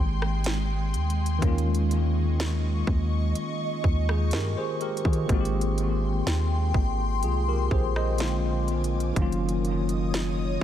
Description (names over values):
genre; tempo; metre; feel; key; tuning
contemporary R&B; 62 BPM; 4/4; straight; Ab major; A4 = 440 Hz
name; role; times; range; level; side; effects
tine electric piano; accompaniment; 0.0-10.6 s; D3 to Eb5; -29 LUFS; left 1 dB; medium stereo tremolo, dub echo
ethereal airy pad; sustained chords; 0.0-10.6 s; Ab3 to Eb6; -33 LUFS; left 2 dB; ensemble chorus, built-in reverb, phaser
long sustained 808-style bass; bass; 0.0-10.6 s; Gb1 to Eb3; -26 LUFS; equal; none
trap drum kit; drums; 0.2-10.6 s; hi-hat, kick drum, rim click, snare drum; -28 LUFS; equal; none
room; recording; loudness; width
digital ambience; echo-heavy mix; -23 LUFS; side -11 dB against mid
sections
0.0-10.6 A section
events
none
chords
0.0 Abmaj7; 1.4 Eb7sus4; 5.3 Abmaj7; 8.2 Bb7; 9.2 Ebm7/Gb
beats
0.45 | 1.42 2.39 3.36 4.32 | 5.29 6.26 7.23 8.20 | 9.16 10.13